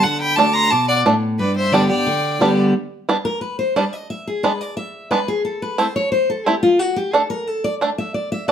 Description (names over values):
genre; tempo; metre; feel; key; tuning
bluegrass; 178 BPM; 4/4; straight; G major; A4 = 440 Hz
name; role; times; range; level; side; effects
clear fiddle; melody; 0.0-2.6 s; B4 to Bb5; -19 LUFS; right 1 dB; none
warm fiddle; second line; 0.0-2.6 s; D5 to D6; -24 LUFS; left 3 dB; none
picked steel-string acoustic guitar; accompaniment; 0.0-8.5 s; G2 to F#5; -20 LUFS; left 1 dB; none
bluegrass banjo; arpeggios; 0.4-8.5 s; G3 to E4; -18 LUFS; right 2 dB; none
room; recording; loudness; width
moderate studio reverb, RT60 0.7 s; band playing live in one room; -16 LUFS; side -9 dB against mid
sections
0.0-2.7 A section; 2.7-8.5 B section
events
steel-string acoustic guitar solo 2.7-8.5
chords
0.0 D; 1.4 G; 4.1 E7; 5.4 Am; 6.8 D5